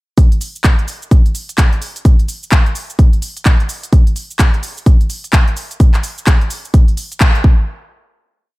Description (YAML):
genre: house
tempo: 128 BPM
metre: 4/4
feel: swing 61% on 16ths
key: none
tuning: none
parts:
  - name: electronic kick drum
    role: drums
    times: 0.2-7.6 s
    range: none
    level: -9 LUFS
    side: equal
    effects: small room ambience
  - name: house drum kit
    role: drums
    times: 0.2-7.4 s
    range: handclaps, hi-hat, shaker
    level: -20 LUFS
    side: equal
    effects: small room ambience
room: digital ambience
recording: none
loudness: -11 LUFS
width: side -21 dB against mid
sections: 0.2-7.7 drop; 7.7-8.6 final hit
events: drop 0.2-7.7; band accent 7.2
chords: none